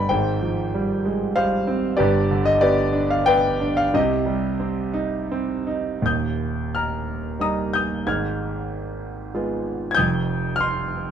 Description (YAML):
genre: classical, lyrical solo piano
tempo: 80-98 BPM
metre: 3/4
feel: rubato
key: Eb major from 6.0 s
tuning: A4 = 439 Hz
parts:
  - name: clear concert grand piano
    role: solo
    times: 0.0-11.1 s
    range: Eb1 to Ab6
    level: -20 LUFS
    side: equal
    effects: none
room: light reverb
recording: dark, warm production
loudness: -20 LUFS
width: side -8 dB against mid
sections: 0.0-6.0 A section; 6.0-11.1 B section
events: none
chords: 0.1 Fmadd9/Ab; 2.0 G; 3.9 Cm; 6.0 Eb; 8.1 Abm6; 10.0 F7(no3)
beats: | 0.09 0.72 1.35 | 1.97 2.61 3.26 | 3.93 4.60 5.31 | 6.04 6.73 7.40 | 8.06 8.72 9.35 | 9.97 10.60